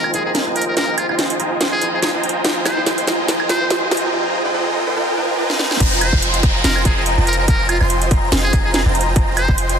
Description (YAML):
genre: future bass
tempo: 143 BPM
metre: 4/4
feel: swing 55% on 16ths, half-time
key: F minor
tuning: A4 = 440 Hz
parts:
  - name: trumpet with metal mute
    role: melody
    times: 0.0-9.5 s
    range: F4 to C5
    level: -23 LUFS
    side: equal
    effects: sidechain pumping, digital delay
  - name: dark grand piano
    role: accompaniment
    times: 0.0-5.6 s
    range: Eb3 to G4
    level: -35 LUFS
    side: left 5 dB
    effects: sidechain pumping, ping-pong delay
  - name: dense compressed supersaw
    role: riff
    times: 0.0-9.8 s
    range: F4 to C6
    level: -20 LUFS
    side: right 1 dB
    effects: cassette tape, sidechain pumping, low-pass filter
  - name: warm 808-style bass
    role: bass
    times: 0.0-9.8 s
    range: F1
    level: -20 LUFS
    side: equal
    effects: sidechain pumping, high-pass filter
  - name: trap drum kit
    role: drums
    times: 0.0-9.8 s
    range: crash cymbal, hi-hat, snare drum, woodblock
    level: -20 LUFS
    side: right 1 dB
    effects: overdrive
  - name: riser and downlifter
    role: sound effects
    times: 1.7-9.2 s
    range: none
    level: -26 LUFS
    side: equal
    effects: none
  - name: airy dreamy lead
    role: arpeggios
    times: 5.8-9.8 s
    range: Bb5 to C6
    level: -25 LUFS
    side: left 1 dB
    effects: chorus, sidechain pumping, ping-pong delay
  - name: electronic kick drum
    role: drums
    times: 5.8-9.6 s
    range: none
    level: -16 LUFS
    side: equal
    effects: overdrive
room: moderate lush hall reverb, RT60 1.9 s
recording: dense, heavily limited modern master, high-pass filter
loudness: -14 LUFS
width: side -7 dB against mid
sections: 0.0-5.8 A section; 5.8-9.8 B section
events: build-up 0.0-5.8; drum fill 0.0-4.1, 5.5-5.8; filter sweep on supersaw synth 0.0-5.8; riser 1.7-5.8; drop 5.8-9.8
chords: 0.0 Fm11